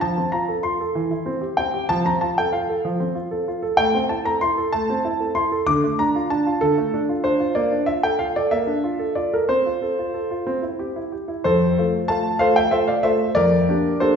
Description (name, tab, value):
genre	classical-period piano sonatina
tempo	63 BPM (dotted quarters)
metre	6/8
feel	straight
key	F major from 3.8 s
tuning	A4 = 441 Hz
part	clear grand piano	solo	0.0-14.2 s	F2 to D6	-18 LUFS	equal	none
room	wet recital hall reverb, RT60 1.6 s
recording	heard from further back in the room, nothing above 7.7 kHz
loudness	-19 LUFS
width	side -6 dB against mid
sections	0.0-11.5 A section; 11.5-14.2 B section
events	none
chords	0.0 F; 1.0 C/E; 1.9 F; 3.8 Am; 5.7 Dm; 7.6 Bbmaj7; 9.5 F/C; 10.5 C; 11.5 F; 13.4 Gm7/F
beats	| 0.02 0.96 | 1.90 2.84 | 3.78 4.72 | 5.67 6.62 | 7.56 8.52 | 9.50 10.48 | 11.46 12.41 | 13.37